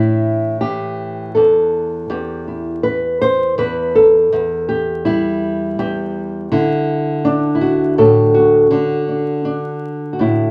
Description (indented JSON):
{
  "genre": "folk, solo fingerstyle acoustic guitar",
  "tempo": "82 BPM",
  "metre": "3/4",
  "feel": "straight",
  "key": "unclear",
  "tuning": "A4 = 441 Hz",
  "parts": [
    { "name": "nylon-string guitar", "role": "solo", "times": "0.0-10.5 s", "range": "E2 to C5", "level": "-16 LUFS", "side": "equal", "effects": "none" }
  ],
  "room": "moderate club reverb, RT60 0.7 s",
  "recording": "vinyl crackle",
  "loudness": "-16 LUFS",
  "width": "mono",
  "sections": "0.0-10.5 A section",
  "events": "none",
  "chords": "0.0 A5; 2.1 Em; 6.5 D"
}